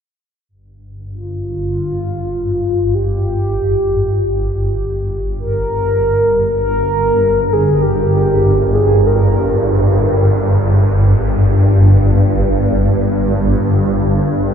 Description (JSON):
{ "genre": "dark ambient drone", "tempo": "free time", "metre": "none", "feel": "none", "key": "G minor", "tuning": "A4 = 440 Hz", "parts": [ { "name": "swarming drone", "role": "drone", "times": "1.0-14.5 s", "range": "G1 to G2", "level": "-14 LUFS", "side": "equal", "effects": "built-in reverb" }, { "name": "mellow horn-like synth lead", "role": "melody", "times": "1.1-10.0 s", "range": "F4 to Bb4", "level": "-17 LUFS", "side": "equal", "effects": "chorus, diffuse ambient delay" } ], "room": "wet huge ambient reverb, RT60 7.8 s", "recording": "dark, warm production", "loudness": "-12 LUFS", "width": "side -8 dB against mid", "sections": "0.5-14.5 A section", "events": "none", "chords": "none" }